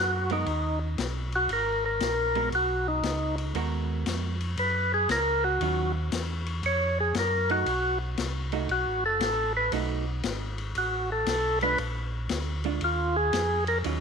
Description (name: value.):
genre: soul jazz organ trio.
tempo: 117 BPM.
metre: 4/4.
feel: swing 67% on 8ths.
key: unclear.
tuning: A4 = 440 Hz.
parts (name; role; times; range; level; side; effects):
percussive tonewheel organ; melody; 0.0-13.8 s; Eb4 to Db5; -26 LUFS; equal; slow rotary speaker.
mellow tonewheel organ; bass; 0.0-14.0 s; F#1 to Gb2; -31 LUFS; equal; slow rotary speaker.
vintage hollow-body jazz guitar; accompaniment; 0.3-14.0 s; Eb3 to Bb4; -34 LUFS; right 14 dB; none.
vintage drum kit; drums; 0.3-14.0 s; hi-hat, ride cymbal, snare drum; -35 LUFS; left 7 dB; none.
room: light reverb, small room ambience.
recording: 1960s-style stereo with parts hard left and right.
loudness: -25 LUFS.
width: side -6 dB against mid.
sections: 0.0-14.0 A section.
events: tonewheel organ solo 0.0-14.0.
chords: 0.0 Abm9; 5.6 Ebm9; 7.7 B7(no3); 11.8 Bb7.